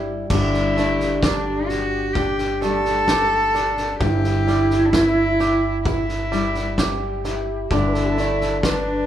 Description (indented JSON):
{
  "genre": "acoustic folk duo or small band",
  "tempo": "65 BPM",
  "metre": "4/4",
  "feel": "straight",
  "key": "unclear",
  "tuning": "A4 = 440 Hz",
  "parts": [
    { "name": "mellow hollow wooden flute", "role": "second line", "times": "0.0-9.1 s", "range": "E4 to B4", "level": "-24 LUFS", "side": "right 3 dB", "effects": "none" },
    { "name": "fingerpicked steel-string acoustic guitar", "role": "accompaniment", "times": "0.0-9.1 s", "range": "G2 to C5", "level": "-26 LUFS", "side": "left 2 dB", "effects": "none" },
    { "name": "bluegrass banjo", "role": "arpeggios", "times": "0.0-9.1 s", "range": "D3 to G4", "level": "-30 LUFS", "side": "right 6 dB", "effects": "none" },
    { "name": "upright bass", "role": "bass", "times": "0.0-9.1 s", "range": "G1", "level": "-26 LUFS", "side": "equal", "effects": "none" },
    { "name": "warm cello", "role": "melody", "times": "0.3-9.1 s", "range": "D4 to A4", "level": "-23 LUFS", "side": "left 1 dB", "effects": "none" },
    { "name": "loose indie drum kit", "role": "drums", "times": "0.3-8.8 s", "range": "crash cymbal, kick drum, snare drum", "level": "-26 LUFS", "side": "equal", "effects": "none" }
  ],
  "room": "wet studio reverb, RT60 0.6 s",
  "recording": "band playing live in one room",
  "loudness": "-18 LUFS",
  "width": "side -10 dB against mid",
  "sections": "0.3-9.1 A section",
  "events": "none",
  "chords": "0.3 Gsus2; 4.0 Em/G"
}